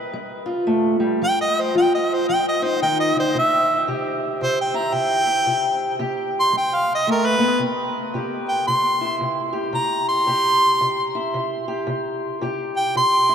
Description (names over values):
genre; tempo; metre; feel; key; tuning
acoustic country blues, solo or duo; 112 BPM; 4/4; swing 62% on 8ths; C major; A4 = 441 Hz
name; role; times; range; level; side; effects
fingerpicked steel-string acoustic guitar; accompaniment; 0.0-13.3 s; C3 to B4; -23 LUFS; equal; none
mellow harmonica; melody; 1.2-13.3 s; Bb4 to C6; -20 LUFS; equal; none
room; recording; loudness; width
wet cathedral reverb, RT60 7.3 s; in a vast, echoing space; -18 LUFS; side -8 dB against mid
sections
0.0-7.6 A section; 7.6-13.3 A section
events
harmonica solo 0.0-13.3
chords
0.0 G7; 1.2 Eb69; 3.3 C; 6.5 G; 7.6 C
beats
0.14 0.68 | 1.21 1.74 2.28 2.81 | 3.35 3.88 4.41 4.95 | 5.48 6.01 6.55 7.08 | 7.62 8.15 8.69 9.22 | 9.76 10.29 10.83 11.37 | 11.90 12.44 12.97